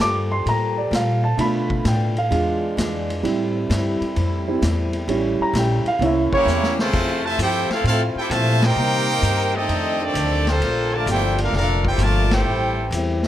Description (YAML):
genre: jazz, big band swing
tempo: 130 BPM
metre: 4/4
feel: swing 68% on 8ths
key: F major from 6.9 s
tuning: A4 = 441 Hz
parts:
  - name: dark concert grand piano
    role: accompaniment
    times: 0.0-6.8 s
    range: G3 to D6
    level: -22 LUFS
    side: right 2 dB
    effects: none
  - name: picked plugged-in steel-string acoustic guitar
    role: accompaniment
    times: 0.0-13.3 s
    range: F2 to A4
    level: -30 LUFS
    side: left 3 dB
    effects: none
  - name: dark trombone section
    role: sustained chords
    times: 0.0-13.3 s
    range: C3 to A4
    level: -30 LUFS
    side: left 2 dB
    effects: none
  - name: upright bass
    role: bass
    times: 0.0-13.3 s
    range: F1 to C3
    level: -22 LUFS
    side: equal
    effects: none
  - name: vintage drum kit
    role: drums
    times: 0.0-13.3 s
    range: crash cymbal, hi-hat, kick drum, ride cymbal, snare drum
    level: -28 LUFS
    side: equal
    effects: none
  - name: brilliant trumpet section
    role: melody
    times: 6.3-13.3 s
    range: A3 to A5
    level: -22 LUFS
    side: equal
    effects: none
  - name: mellow trombone section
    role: second line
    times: 6.3-13.3 s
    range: C3 to A4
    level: -26 LUFS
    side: right 1 dB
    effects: none
room: moderate large studio reverb, RT60 1.4 s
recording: none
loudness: -18 LUFS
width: side -12 dB against mid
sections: 0.0-6.9 A section; 6.9-13.3 B section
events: grand piano solo 0.0-6.9; drum fill 6.5-6.9; band accent 8.5, 12.2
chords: 0.0 Gm9; 1.4 Bm7b5; 2.3 E7b9; 3.2 Am7; 5.1 A7; 6.0 C7b9; 6.9 Fmaj7; 8.8 Cm7; 9.7 F13; 10.6 Bbmaj7; 12.5 Am7